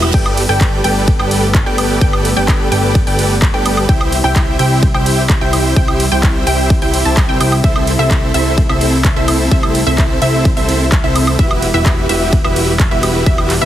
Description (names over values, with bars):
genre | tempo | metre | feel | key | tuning
EDM, festival progressive house | 128 BPM | 4/4 | straight | G major | A4 = 440 Hz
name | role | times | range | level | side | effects
lush unison pad | sustained chords | 0.0-13.7 s | C3 to F#5 | -22 LUFS | equal | chorus, sidechain pumping
wide unison pluck | arpeggios | 0.0-13.7 s | E5 to A5 | -21 LUFS | equal | sidechain pumping, digital delay
dense compressed supersaw | riff | 0.0-13.7 s | C4 to A5 | -17 LUFS | right 1 dB | sidechain pumping, digital delay
fat analog bass | bass | 0.0-13.7 s | E1 to C2 | -17 LUFS | equal | sidechain pumping
big-room dance drum kit | drums | 0.0-13.6 s | crash cymbal, handclaps, hi-hat, ride cymbal, woodblock | -20 LUFS | right 1 dB | overdrive
electronic kick drum | drums | 0.1-13.4 s | none | -14 LUFS | equal | overdrive
room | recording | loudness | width
little or no reverb | heavily compressed radio sound | -11 LUFS | side -12 dB against mid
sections
0.0-13.7 A section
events
none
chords
0.1 Gadd9; 3.9 C; 7.6 Am/C; 11.4 Emadd9